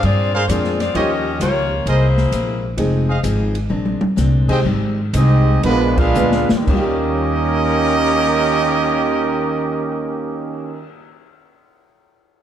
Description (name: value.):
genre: jazz, big band swing.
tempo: 112-131 BPM.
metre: 4/4.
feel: swing 67% on 8ths.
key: Eb mixolydian.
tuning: A4 = 440 Hz.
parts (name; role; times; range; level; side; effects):
bright saxophone section; melody; 0.0-2.8 s; Ab3 to Eb5; -21 LUFS; left 3 dB; none.
picked steel-string acoustic guitar; accompaniment; 0.0-11.0 s; Ab2 to Ab4; -27 LUFS; left 4 dB; none.
upright bass; bass; 0.0-10.8 s; F1 to G2; -19 LUFS; equal; none.
open jazz drum kit; drums; 0.0-10.9 s; crash cymbal, cymbal swell, hi-hat, kick drum, ride cymbal, snare drum, toms; -23 LUFS; left 1 dB; none.
warm trumpet section; stabs; 0.3-4.6 s; F4 to G5; -25 LUFS; right 1 dB; none.
clear baby grand piano; accompaniment; 0.5-11.0 s; Eb2 to C5; -24 LUFS; right 1 dB; none.
bright trombone section; second line; 5.1-10.8 s; Eb3 to G4; -20 LUFS; right 3 dB; none.
clear trumpet section; melody; 5.2-10.9 s; Ab3 to F5; -20 LUFS; right 2 dB; none.
room: light reverb.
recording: dark, warm production.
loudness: -15 LUFS.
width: side -10 dB against mid.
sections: 0.0-4.6 A section; 4.6-6.7 B section; 6.7-11.0 C section.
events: slowing down 2.8-6.7; drum fill 3.7-4.2, 6.1-6.7; band accent 5.9.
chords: 0.0 Bb9; 0.9 Eb9; 1.9 C7alt; 2.8 Fm7; 3.7 Bb9; 4.6 Abmaj7; 5.6 Bb7b9; 6.7 Eb9.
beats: 0.03 0.49 | 0.94 1.40 1.86 2.32 | 2.78 3.24 3.70 4.17 | 4.65 5.13 5.63 6.15 | 6.68 7.21 7.75 8.29 | 8.83 9.37 9.91 10.44.